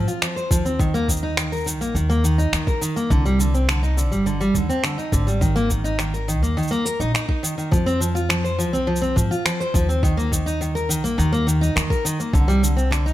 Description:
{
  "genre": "folktronica",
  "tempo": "104 BPM",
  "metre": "4/4",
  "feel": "straight",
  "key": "F dorian",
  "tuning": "A4 = 440 Hz",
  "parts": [
    { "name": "fingerpicked steel-string acoustic guitar", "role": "arpeggios", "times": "0.0-13.1 s", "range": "D3 to C5", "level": "-22 LUFS", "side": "equal", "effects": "digital delay" },
    { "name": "upright bass", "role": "bass", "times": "0.0-13.1 s", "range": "G1 to Ab2", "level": "-22 LUFS", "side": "equal", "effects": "none" },
    { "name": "electronic cabasa and finger snaps", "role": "drums", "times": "0.1-13.1 s", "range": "none", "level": "-26 LUFS", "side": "right 1 dB", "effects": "none" },
    { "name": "electronic kick drum", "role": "drums", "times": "0.5-12.5 s", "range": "none", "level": "-21 LUFS", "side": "equal", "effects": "none" }
  ],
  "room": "little or no reverb",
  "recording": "none",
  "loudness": "-18 LUFS",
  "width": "side -14 dB against mid",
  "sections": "0.0-13.1 A section",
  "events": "none",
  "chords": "0.0 F5; 0.8 Eb5; 3.1 Cmadd9; 5.4 Absus2; 7.7 F5; 10.0 Eb5; 12.3 Csus2",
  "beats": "0.22 | 0.80 1.38 1.95 2.53 | 3.11 3.69 4.26 4.84 | 5.42 5.99 6.57 7.15 | 7.72 8.30 8.88 9.45 | 10.03 10.61 11.19 11.76 | 12.34 12.92"
}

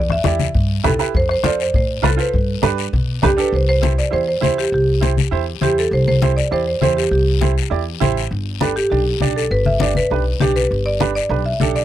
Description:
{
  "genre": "latin, cumbia",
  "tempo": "201 BPM",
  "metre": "4/4",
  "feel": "straight",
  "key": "C major",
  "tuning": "A4 = 442 Hz",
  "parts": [
    { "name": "marimba with medium hard mallets", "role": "melody", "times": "0.0-11.8 s", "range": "G4 to E5", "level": "-20 LUFS", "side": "right 1 dB", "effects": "none" },
    { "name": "upright bass", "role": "bass", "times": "0.0-11.8 s", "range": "G1 to B2", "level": "-20 LUFS", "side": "equal", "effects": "none" },
    { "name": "bombo", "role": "percussion", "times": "0.1-3.4 s", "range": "none", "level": "-21 LUFS", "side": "left 1 dB", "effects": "none" },
    { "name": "congas", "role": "percussion", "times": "0.1-11.8 s", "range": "none", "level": "-22 LUFS", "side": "left 4 dB", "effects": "none" },
    { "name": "bright upright piano", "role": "accompaniment", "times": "0.2-11.8 s", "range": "D4 to D5", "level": "-22 LUFS", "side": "right 13 dB", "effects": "none" },
    { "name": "guiro", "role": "percussion", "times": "0.3-11.8 s", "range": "none", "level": "-29 LUFS", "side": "left 20 dB", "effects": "none" }
  ],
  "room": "light reverb",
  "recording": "dry, close 1970s-style studio recording",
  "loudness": "-15 LUFS",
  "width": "side -12 dB against mid",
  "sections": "0.0-3.5 A section; 3.5-11.8 B section",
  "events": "none",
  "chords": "0.0 Em; 1.1 F; 2.3 G; 3.5 C; 8.3 G",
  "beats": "0.24 0.54 0.84 | 1.14 1.44 1.74 2.04 | 2.33 2.63 2.93 3.23 | 3.53 3.83 4.13 4.43 | 4.73 5.03 5.33 5.62 | 5.92 6.22 6.52 6.82 | 7.12 7.42 7.72 8.02 | 8.32 8.62 8.91 9.21 | 9.51 9.81 10.11 10.41 | 10.71 11.01 11.31 11.61"
}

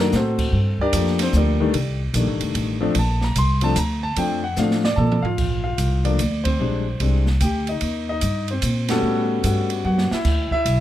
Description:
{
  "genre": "jazz piano trio",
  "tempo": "148 BPM",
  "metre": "3/4",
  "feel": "swing 65% on 8ths",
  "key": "Bb major",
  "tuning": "A4 = 444 Hz",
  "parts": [
    { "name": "warm concert grand piano", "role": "melody", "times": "0.0-10.8 s", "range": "Eb3 to C6", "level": "-23 LUFS", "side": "left 2 dB", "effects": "none" },
    { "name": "upright bass", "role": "bass", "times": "0.0-10.8 s", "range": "F1 to Bb2", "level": "-21 LUFS", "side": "equal", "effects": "none" },
    { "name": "open jazz drum kit", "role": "drums", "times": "0.1-10.8 s", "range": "crash cymbal, hi-hat, kick drum, ride cymbal, snare drum, toms", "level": "-27 LUFS", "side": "right 3 dB", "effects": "none" }
  ],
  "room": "light reverb",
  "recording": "none",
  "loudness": "-18 LUFS",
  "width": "side -12 dB against mid",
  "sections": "0.0-5.4 A section; 5.4-10.8 B section",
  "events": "grand piano solo 0.0-5.4; drum fill 4.6-5.4, 9.9-10.3; band accent 6.4, 8.8",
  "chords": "0.0 D7b9; 0.5 Gm7; 1.7 F13 (rootless); 3.0 Bbmaj9; 6.6 Bb13; 7.8 Eb6; 9.0 A13; 10.3 Dsus2",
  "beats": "0.13 | 0.54 0.94 1.34 | 1.75 2.15 2.55 | 2.96 3.36 3.77 | 4.17 4.58 4.98 | 5.38 5.79 6.20 | 6.60 7.01 7.42 | 7.82 8.23 8.63 | 9.04 9.45 9.85 | 10.26 10.66"
}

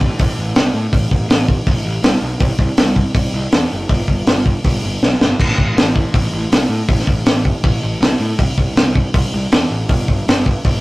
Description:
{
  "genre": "garage rock duo or trio",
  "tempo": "160 BPM",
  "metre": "4/4",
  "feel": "straight",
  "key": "A minor",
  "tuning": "A4 = 440 Hz",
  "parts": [
    { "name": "fuzz picked electric bass", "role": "bass", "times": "0.0-10.8 s", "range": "F#1 to A2", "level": "-20 LUFS", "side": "equal", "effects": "overdrive" },
    { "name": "crunchy breakbeat drum kit", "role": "drums", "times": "0.0-10.7 s", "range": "crash cymbal, hi-hat, kick drum, snare drum", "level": "-14 LUFS", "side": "equal", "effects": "none" }
  ],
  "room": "light reverb",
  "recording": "rough rehearsal-room recording, tube saturation",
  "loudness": "-13 LUFS",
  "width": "side -20 dB against mid",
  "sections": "0.0-10.8 A section",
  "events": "drum fill 5.0-5.4",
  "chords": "none",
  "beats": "0.19 0.56 | 0.93 1.30 1.67 2.04 | 2.41 2.78 3.15 3.52 | 3.89 4.26 4.63 5.01 | 5.38 5.75 6.13 6.50 | 6.88 7.25 7.63 8.01 | 8.38 8.76 9.13 9.51 | 9.89 10.26 10.64"
}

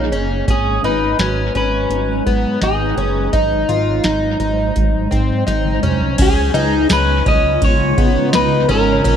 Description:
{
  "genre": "dream pop",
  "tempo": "84 BPM",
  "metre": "4/4",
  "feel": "straight",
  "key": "unclear",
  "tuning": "A4 = 440 Hz",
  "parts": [
    { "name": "electric guitar through a small old amp", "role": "melody", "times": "0.0-9.2 s", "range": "D#4 to D#5", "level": "-19 LUFS", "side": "left 1 dB", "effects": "phaser, dub echo" },
    { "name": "granular cloud pad", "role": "sustained chords", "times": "0.0-9.2 s", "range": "A#2 to A#5", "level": "-23 LUFS", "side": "right 1 dB", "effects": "built-in reverb" },
    { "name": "fingerpicked plugged-in twelve-string acoustic guitar", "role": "arpeggios", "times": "0.0-9.2 s", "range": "B3 to E#4", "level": "-20 LUFS", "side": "left 3 dB", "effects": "analog chorus, dub echo" },
    { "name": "chorused synth bass", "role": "bass", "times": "0.0-9.2 s", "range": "F#1 to C#3", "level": "-20 LUFS", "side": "equal", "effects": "none" },
    { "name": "synth chime", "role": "texture", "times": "0.0-9.2 s", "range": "F#4 to G#5", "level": "-28 LUFS", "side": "right 4 dB", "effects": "ensemble chorus, dub echo" },
    { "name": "booming analog drum machine", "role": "drums", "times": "0.1-9.2 s", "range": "crash cymbal, hi-hat, kick drum, ride cymbal, snare drum, tambourine, toms", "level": "-18 LUFS", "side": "equal", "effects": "none" }
  ],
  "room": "light reverb",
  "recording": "echo-heavy mix",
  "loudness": "-13 LUFS",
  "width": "side -8 dB against mid",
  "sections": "0.0-6.2 A section; 6.2-9.2 B section",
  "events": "drum fill 5.5-6.2",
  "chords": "0.5 G#m7; 3.3 G#7; 6.2 C#7",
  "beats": "| 0.48 1.19 1.91 2.62 | 3.34 4.05 4.76 5.48 | 6.19 6.91 7.62 8.34 | 9.05"
}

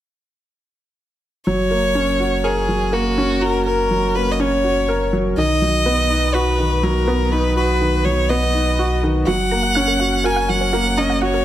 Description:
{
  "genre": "piano and strings electronica",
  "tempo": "123 BPM",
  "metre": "4/4",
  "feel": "straight",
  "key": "F# major",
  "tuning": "A4 = 440 Hz",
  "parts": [
    { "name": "clear violin", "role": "melody", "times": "1.5-11.4 s", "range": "F#4 to G#5", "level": "-20 LUFS", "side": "equal", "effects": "none" },
    { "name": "dark upright piano", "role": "riff", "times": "1.5-11.4 s", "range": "D#3 to A#4", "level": "-20 LUFS", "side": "right 1 dB", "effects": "low-pass filter" },
    { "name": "warm sub bass", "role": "bass", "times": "1.5-11.4 s", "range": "F#1 to B1", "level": "-22 LUFS", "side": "equal", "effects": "none" },
    { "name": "wide unison pluck", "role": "arpeggios", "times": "9.3-11.4 s", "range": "F#4 to A#5", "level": "-26 LUFS", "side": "right 2 dB", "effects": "ping-pong delay" }
  ],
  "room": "light reverb, small room reverb",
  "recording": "none",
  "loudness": "-16 LUFS",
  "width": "side -12 dB against mid",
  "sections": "1.5-11.4 A section",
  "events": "filter sweep on upright piano 1.5-11.4",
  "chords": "1.5 F#; 5.4 B; 9.3 F#",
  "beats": "| 1.47 1.96 2.44 2.93 | 3.42 3.91 4.39 4.88 | 5.37 5.86 6.35 6.83 | 7.32 7.81 8.30 8.79 | 9.27 9.76 10.25 10.74 | 11.22"
}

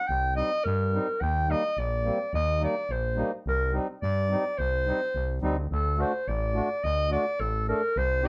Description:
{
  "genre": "klezmer",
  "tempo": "107 BPM",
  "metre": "2/4",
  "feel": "straight",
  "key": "unclear",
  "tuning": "A4 = 436 Hz",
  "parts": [
    { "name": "warm clarinet", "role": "melody", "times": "0.0-8.3 s", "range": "A4 to G5", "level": "-30 LUFS", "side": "equal", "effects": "none" },
    { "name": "growling FM bass", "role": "bass", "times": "0.1-8.3 s", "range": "A1 to G2", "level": "-31 LUFS", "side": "equal", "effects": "none" },
    { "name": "mellow accordion", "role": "accompaniment", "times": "0.4-8.3 s", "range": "G3 to A4", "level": "-34 LUFS", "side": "equal", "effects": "none" }
  ],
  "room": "moderate small room reverb, RT60 0.5 s",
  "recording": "none",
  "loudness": "-28 LUFS",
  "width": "mono",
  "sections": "0.0-5.7 A section; 5.7-8.3 A section",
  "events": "none",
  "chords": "0.0 Cm; 1.2 Eb; 3.5 Cm; 5.7 D",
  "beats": "| 0.09 0.65 | 1.21 1.78 | 2.34 2.90 | 3.46 4.02 | 4.58 5.15 | 5.71 6.27 | 6.83 7.39 | 7.96"
}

